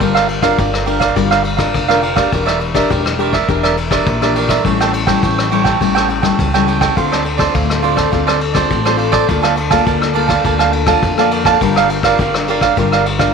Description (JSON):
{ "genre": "samba and choro", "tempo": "103 BPM", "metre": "4/4", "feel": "straight", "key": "unclear", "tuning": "A4 = 440 Hz", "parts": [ { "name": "cavaquinho", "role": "accompaniment", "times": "0.0-13.3 s", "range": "F4 to A5", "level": "-15 LUFS", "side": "right 10 dB", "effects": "none" }, { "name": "nylon-string guitar", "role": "accompaniment", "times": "0.0-13.3 s", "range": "A2 to Bb4", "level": "-18 LUFS", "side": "left 10 dB", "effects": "none" }, { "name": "upright bass", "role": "bass", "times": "0.0-13.3 s", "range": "E1 to F2", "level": "-21 LUFS", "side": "right 1 dB", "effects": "none" }, { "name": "vintage brush drum kit", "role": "drums", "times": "0.0-13.3 s", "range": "kick drum, ride cymbal, rim click", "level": "-18 LUFS", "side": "left 4 dB", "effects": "none" } ], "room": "moderate echo chamber reverb, RT60 2.2 s", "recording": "1960s-style stereo with parts hard left and right", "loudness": "-12 LUFS", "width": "side -5 dB against mid", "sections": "0.0-13.3 A section", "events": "none", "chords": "0.0 Gm7; 2.3 Em7b5; 4.7 A7; 7.0 Dm7; 9.3 Bbmaj7/D; 11.6 Gm7", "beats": "| 0.00 0.59 1.17 1.75 | 2.33 2.91 3.49 4.07 | 4.65 5.23 5.81 6.39 | 6.97 7.55 8.13 8.71 | 9.29 9.87 10.45 11.03 | 11.61 12.20 12.78" }